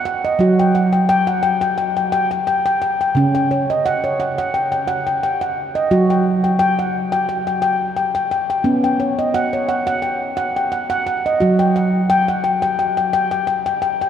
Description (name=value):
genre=world meditative, meditative tuned percussion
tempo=87 BPM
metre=4/4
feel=swing 54% on 16ths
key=unclear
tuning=A4 = 441 Hz
part: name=handpan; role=solo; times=0.0-14.1 s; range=C#3 to G5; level=-16 LUFS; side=equal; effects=none
room=wet cathedral reverb, RT60 6.2 s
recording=in a vast, echoing space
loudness=-15 LUFS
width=side -9 dB against mid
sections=0.0-14.1 A section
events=none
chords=0.4 N.C.; 3.1 D#7#9/C#; 5.9 N.C.; 8.7 B; 11.4 N.C.